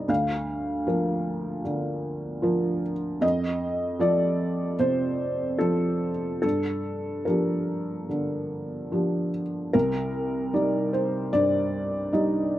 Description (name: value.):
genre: classical, contemporary piece for solo felt piano.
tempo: 75 BPM.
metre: 4/4.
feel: uneven beats, rubato.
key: unclear.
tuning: A4 = 440 Hz.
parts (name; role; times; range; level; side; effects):
felt-muted upright piano; solo; 0.0-12.6 s; C2 to F5; -24 LUFS; equal; none.
room: light reverb.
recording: recorded outdoors, with no room sound.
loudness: -24 LUFS.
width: side -14 dB against mid.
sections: 0.0-9.7 A section; 9.7-12.6 A section.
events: none.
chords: 0.1 Bb/D; 3.2 F7; 6.4 Gm7; 9.7 Cmadd9.